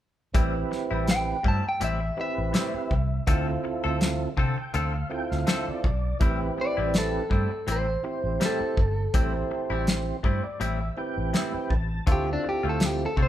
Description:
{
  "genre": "straight-eighth soul blues",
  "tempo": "82 BPM",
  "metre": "4/4",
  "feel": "swing 55% on 16ths",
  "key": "A minor",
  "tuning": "A4 = 440 Hz",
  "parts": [
    { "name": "mellow tonewheel organ", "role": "accompaniment", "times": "0.3-13.1 s", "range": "C4 to A5", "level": "-31 LUFS", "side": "right 4 dB", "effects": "slow rotary speaker, chorus vibrato" },
    { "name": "direct-recorded clean electric guitar", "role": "stabs", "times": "0.3-13.3 s", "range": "A2 to A4", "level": "-33 LUFS", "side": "left 4 dB", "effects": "none" },
    { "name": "vintage muted fingered electric bass", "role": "bass", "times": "0.3-13.3 s", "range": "G1 to C3", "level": "-29 LUFS", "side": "equal", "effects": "none" },
    { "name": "cloth-damped thuddy drum kit", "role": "drums", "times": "0.3-13.3 s", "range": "hi-hat, kick drum, snare drum", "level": "-25 LUFS", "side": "equal", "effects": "none" },
    { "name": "electric guitar at the edge of break-up", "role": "melody", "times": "1.1-13.3 s", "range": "D4 to A5", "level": "-29 LUFS", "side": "left 1 dB", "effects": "none" }
  ],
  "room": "light reverb",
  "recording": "band playing live in one room",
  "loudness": "-24 LUFS",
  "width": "side -12 dB against mid",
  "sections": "0.3-13.3 A section",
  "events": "tonewheel organ fill 4.0-6.2, 9.9-12.1",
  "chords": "0.3 Am7; 3.3 Dm7; 6.2 Am7; 12.1 Dm7",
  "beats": "| 0.35 1.08 1.81 2.54 | 3.27 4.01 4.74 5.47 | 6.21 6.94 7.67 8.40 | 9.14 9.87 10.61 11.34 | 12.07 12.81"
}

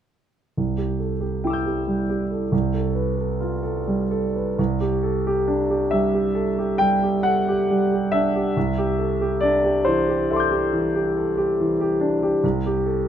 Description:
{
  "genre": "classical, impressionist solo piano",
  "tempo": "46 BPM (dotted quarters)",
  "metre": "9/8",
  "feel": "uneven beats, rubato",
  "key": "C lydian",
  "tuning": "A4 = 440 Hz",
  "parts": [
    { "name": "clear concert grand piano", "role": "solo", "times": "0.6-13.1 s", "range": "C2 to G6", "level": "-19 LUFS", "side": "equal", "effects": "none" }
  ],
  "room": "light reverb",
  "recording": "close, detailed microphones",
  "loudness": "-19 LUFS",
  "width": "side -9 dB against mid",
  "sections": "0.6-4.6 A section; 4.6-13.1 B section",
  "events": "none",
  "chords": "0.6 Cadd9; 2.5 G9/C; 4.6 Cadd9; 8.6 D9sus4/C",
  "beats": "| 0.57 1.87 3.18 | 4.58 5.91 7.25 | 8.56 9.87 11.16 | 12.43"
}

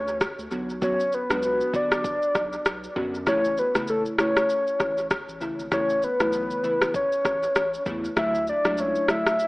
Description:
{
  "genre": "afrobeats",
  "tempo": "98 BPM",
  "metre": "4/4",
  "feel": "swing 58% on 16ths",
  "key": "A major",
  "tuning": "A4 = 441 Hz",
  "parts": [
    { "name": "soft octave-layered synth lead", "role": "melody", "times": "0.0-9.5 s", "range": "A4 to E5", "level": "-24 LUFS", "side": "left 1 dB", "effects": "chorus, dub echo" },
    { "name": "saturated sub bass", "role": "bass", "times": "0.0-9.0 s", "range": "F#1 to F#2", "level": "-39 LUFS", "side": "equal", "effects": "none" },
    { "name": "afro-pop drum kit", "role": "drums", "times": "0.1-9.5 s", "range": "kick drum, rim click, shaker", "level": "-27 LUFS", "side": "equal", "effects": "dub echo" },
    { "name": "glassy digital keys", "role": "accompaniment", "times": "0.5-9.4 s", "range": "C#3 to F#4", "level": "-30 LUFS", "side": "equal", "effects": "chorus, dub echo" }
  ],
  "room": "light reverb, digital ambience",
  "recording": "echo-heavy mix, AM radio sound",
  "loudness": "-22 LUFS",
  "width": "side -22 dB against mid",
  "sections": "0.0-9.5 A section",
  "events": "none",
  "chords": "0.0 N.C.; 0.5 Bm; 3.3 A; 8.2 Dadd9",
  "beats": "0.21 | 0.82 1.43 2.04 2.66 | 3.27 3.88 4.49 5.11 | 5.72 6.33 6.94 7.55 | 8.17 8.78 9.39"
}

